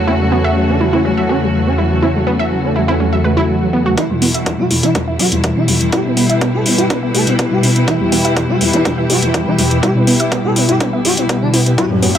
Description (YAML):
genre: melodic techno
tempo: 123 BPM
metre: 4/4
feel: straight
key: E dorian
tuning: A4 = 440 Hz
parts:
  - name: expressive portamento lead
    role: melody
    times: 0.0-12.1 s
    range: E3 to A4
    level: -19 LUFS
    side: equal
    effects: wide subtle chorus, sidechain pumping, tape echo
  - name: bright studio string section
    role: sustained chords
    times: 0.0-12.2 s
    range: E2 to F#4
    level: -25 LUFS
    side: equal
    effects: sidechain pumping
  - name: brassy analog pad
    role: stabs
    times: 0.0-12.2 s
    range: E2 to F#4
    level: -16 LUFS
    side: left 1 dB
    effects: chorus, sidechain pumping, analog delay
  - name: granular cloud pad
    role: texture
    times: 0.0-12.2 s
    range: E3 to G5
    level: -22 LUFS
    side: equal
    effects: built-in reverb, sidechain pumping
  - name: wide unison pluck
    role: arpeggios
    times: 0.1-12.2 s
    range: B3 to E5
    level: -20 LUFS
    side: right 1 dB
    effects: sidechain pumping, analog delay
  - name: airy dreamy lead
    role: second line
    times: 4.0-12.1 s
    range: E2 to A3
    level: -22 LUFS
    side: equal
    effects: chorus, sidechain pumping, analog delay
  - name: electronic hi-hat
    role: drums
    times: 4.0-12.2 s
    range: none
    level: -19 LUFS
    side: left 1 dB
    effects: overdrive, sidechain pumping on hats
  - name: electronic kick drum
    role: drums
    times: 4.0-11.9 s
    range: none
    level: -20 LUFS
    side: right 1 dB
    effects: high-pass filter on kick, high-pass filter on room
  - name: riser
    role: sound effects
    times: 12.0-12.2 s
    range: none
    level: -32 LUFS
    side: left 3 dB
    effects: none
room: light reverb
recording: dry, gritty hardware recording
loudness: -12 LUFS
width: side -9 dB against mid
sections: 0.0-4.0 A section; 4.0-12.2 B section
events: build-up 4.0-12.2; filter sweep on analog synth pad 4.0-12.2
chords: 0.0 F#m/E; 4.0 Em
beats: | 0.07 0.56 1.05 1.54 | 2.02 2.51 3.00 3.49 | 3.98 4.46 4.95 5.44 | 5.93 6.42 6.90 7.39 | 7.88 8.37 8.86 9.34 | 9.83 10.32 10.81 11.29 | 11.78